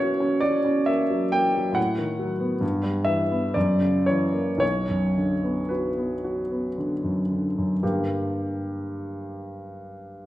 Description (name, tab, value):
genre	classical, romantic nocturne for solo piano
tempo	54-71 BPM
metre	3/4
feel	rubato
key	B minor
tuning	A4 = 443 Hz
part	clear grand piano	solo	0.0-10.3 s	B1 to G5	-22 LUFS	equal	none
room	wet recital hall reverb, RT60 1.5 s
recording	recorded in a church or concert hall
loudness	-22 LUFS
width	side -14 dB against mid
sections	0.0-7.8 A section; 7.8-10.3 B section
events	none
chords	0.0 F#7/B; 1.8 B7/A; 2.6 Em/G; 3.6 F#7; 4.6 Bm; 7.8 Gm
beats	0.88 | 1.77 2.62 3.55 | 4.61 5.72 6.78 | 7.82 8.79 9.72